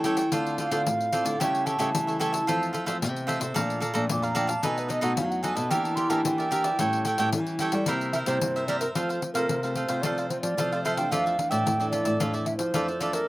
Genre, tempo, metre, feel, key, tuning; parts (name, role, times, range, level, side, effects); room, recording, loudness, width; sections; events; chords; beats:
samba and choro; 111 BPM; 4/4; straight; F major from 9.0 s; A4 = 437 Hz
cavaquinho; accompaniment; 0.0-13.3 s; D#4 to Bb5; -29 LUFS; right 2 dB
nylon-string guitar; accompaniment; 0.0-13.3 s; F2 to G4; -34 LUFS; left 3 dB
nylon-string guitar; bass; 0.0-13.2 s; A2 to G3; -30 LUFS; equal
pandeiro; percussion; 0.0-13.3 s; -33 LUFS; left 4 dB
baroque flute; melody; 0.3-13.3 s; Bb4 to D6; -28 LUFS; right 2 dB
little or no reverb; recorded outdoors, with no room sound; -24 LUFS; side -18 dB against mid
0.0-9.0 A section; 9.0-13.3 B section
flute solo 0.0-9.0
0.3 Dm7; 1.4 A7/C#; 2.5 Fmaj7; 3.6 Bbmaj7; 4.6 B7; 5.7 Em7b5; 6.8 A7; 7.9 C7; 9.0 F; 11.1 Dmadd9/F
| 0.32 0.86 1.40 1.94 | 2.48 3.02 3.56 4.10 | 4.64 5.18 5.72 6.26 | 6.79 7.33 7.88 8.41 | 8.96 9.49 10.04 10.58 | 11.12 11.66 12.20 12.74